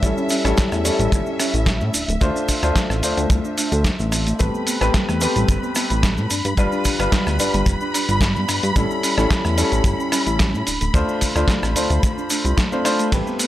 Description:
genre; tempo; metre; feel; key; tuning
nu-disco, nu disco; 110 BPM; 4/4; straight; unclear; A4 = 440 Hz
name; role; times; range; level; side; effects
warm baby grand piano; accompaniment; 0.0-13.5 s; G3 to C5; -23 LUFS; left 2 dB; sidechain pumping, analog delay
warm studio violin section; sustained chords; 0.0-13.5 s; B4 to B5; -28 LUFS; equal; sidechain pumping
soft round pluck; arpeggios; 0.0-13.4 s; G3 to C5; -27 LUFS; right 2 dB; lush chorus, sidechain pumping, analog delay
chorused synth bass; bass; 0.0-13.2 s; D1 to A2; -22 LUFS; equal; none
dusty soul sampler-style drum kit; drums; 0.0-13.5 s; hi-hat, ride cymbal, rim click, shaker, snare drum; -24 LUFS; equal; none
kick drum; drums; 0.0-13.2 s; none; -20 LUFS; equal; none
cabasa; percussion; 0.0-13.5 s; none; -33 LUFS; right 2 dB; none
room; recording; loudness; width
studio reverb; dry, gritty hardware recording, transformer saturation; -17 LUFS; side -14 dB against mid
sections
0.0-13.5 A section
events
none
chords
0.0 A7; 1.9 Dm7; 4.4 Am9; 6.3 G7; 8.8 A7; 10.7 Dm7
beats
| 0.03 0.58 1.12 1.67 | 2.21 2.76 3.31 3.85 | 4.40 4.94 5.49 6.03 | 6.58 7.12 7.67 8.21 | 8.76 9.30 9.85 10.40 | 10.94 11.49 12.03 12.58 | 13.12

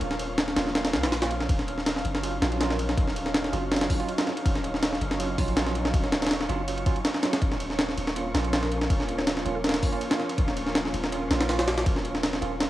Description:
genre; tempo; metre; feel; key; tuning
drum and bass, jungle; 162 BPM; 4/4; straight; Eb minor; A4 = 440 Hz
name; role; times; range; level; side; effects
lush unison pad; sustained chords; 0.0-12.7 s; F3 to F5; -34 LUFS; equal; chorus, vintage 12-bit sampler grit, cassette tape
long sustained 808-style bass; bass; 0.0-12.7 s; Eb1 to Db2; -32 LUFS; equal; none
jungle sampler-style drum kit; drums; 0.0-12.7 s; hi-hat, kick drum, ride cymbal, snare drum; -25 LUFS; equal; overdrive, cassette tape
wind-like tuned noise texture; texture; 0.0-12.7 s; Db5 to Db6; -40 LUFS; right 2 dB; built-in reverb, cassette tape
bell-like tine electric piano; stabs; 0.6-12.7 s; Gb3 to F4; -34 LUFS; right 6 dB; cassette tape, dub echo
mallet-like synth pluck; melody; 2.7-3.9, 8.6-9.9 s; Gb4 to Db5; -39 LUFS; left 1 dB; none
room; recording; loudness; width
light reverb; home recording on cassette; -24 LUFS; side -15 dB against mid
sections
0.0-12.7 A section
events
kick drops out 0.8-1.5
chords
0.0 Bbm/Eb; 1.5 Ebm9; 7.4 Bbm/Eb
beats
| 0.01 0.38 0.75 1.12 | 1.49 1.86 2.23 2.60 | 2.97 3.34 3.71 4.08 | 4.46 4.83 5.20 5.57 | 5.94 6.31 6.68 7.05 | 7.42 7.79 8.16 8.53 | 8.90 9.27 9.64 10.01 | 10.38 10.75 11.12 11.49 | 11.86 12.23 12.60

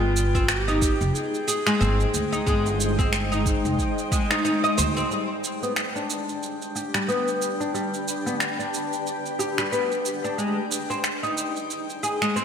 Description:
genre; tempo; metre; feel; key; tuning
organic downtempo; 91 BPM; 4/4; swing 58% on 16ths; unclear; A4 = 441 Hz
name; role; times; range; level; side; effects
mellow clarinet; melody; 0.0-4.4 s; F4 to Ab4; -30 LUFS; left 1 dB; ping-pong delay
granular cloud pad; sustained chords; 0.0-12.4 s; Ab3 to Eb5; -31 LUFS; equal; built-in reverb, sidechain pumping
upright bass; bass; 0.0-5.0 s; F1 to D2; -25 LUFS; equal; sidechain pumping
drifting glass-harmonics texture; texture; 0.0-12.4 s; G5; -36 LUFS; left 2 dB; chorus, built-in reverb
electronic shaker and finger snaps; drums; 0.2-12.4 s; none; -29 LUFS; right 2 dB; gated reverb
oud; arpeggios; 0.3-12.4 s; G3 to Eb5; -26 LUFS; left 1 dB; low-pass filter, ping-pong delay
electronic kick drum; drums; 0.3-4.3 s; none; -26 LUFS; equal; none
room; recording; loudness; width
wet lush hall reverb, RT60 2.0 s; bright 1980s-style digital production; -22 LUFS; side -7 dB against mid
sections
0.0-5.1 A section; 5.1-12.4 B section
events
kick drops out 4.4-5.1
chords
0.0 Ab; 5.1 G; 10.4 Ab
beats
0.49 1.15 1.81 | 2.47 3.13 3.79 4.45 | 5.11 5.77 6.43 7.08 | 7.75 8.40 9.06 9.72 | 10.38 11.04 11.70 12.36

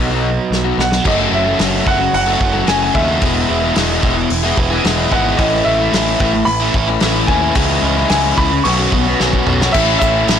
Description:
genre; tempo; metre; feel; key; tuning
indie rock; 110 BPM; 4/4; straight; unclear; A4 = 441 Hz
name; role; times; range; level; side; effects
clear upright piano; melody; 0.0-10.4 s; D#5 to C#6; -19 LUFS; right 1 dB; tape echo
biting overdriven guitar; riff; 0.0-10.4 s; A2 to F#4; -18 LUFS; right 6 dB; lush chorus, tape echo
overdriven electric guitar; riff; 0.0-10.4 s; E2 to A4; -19 LUFS; left 11 dB; none
growling picked electric bass; bass; 0.0-10.4 s; E1 to D#2; -20 LUFS; equal; overdrive, transformer saturation
loose indie drum kit; drums; 0.5-10.4 s; crash cymbal, hi-hat, kick drum, snare drum, toms; -19 LUFS; equal; none
percussive tonewheel organ; sustained chords; 5.4-10.4 s; A4 to C#6; -29 LUFS; equal; none
egg shaker; percussion; 9.7-10.4 s; none; -36 LUFS; right 13 dB; none
room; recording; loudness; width
studio reverb; blown-out, overdriven recording, overdrive; -12 LUFS; side -8 dB against mid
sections
0.0-1.1 A section; 1.1-9.7 B section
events
drum fill 0.5-1.1, 9.2-9.7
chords
0.0 B; 1.1 F#m7; 3.2 E; 5.4 Aadd9; 7.6 C#m7; 8.7 Bsus2; 9.7 A6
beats
0.51 | 1.06 1.60 2.14 2.68 | 3.22 3.77 4.31 4.85 | 5.39 5.94 6.48 7.02 | 7.57 8.11 8.65 9.20 | 9.74 10.29

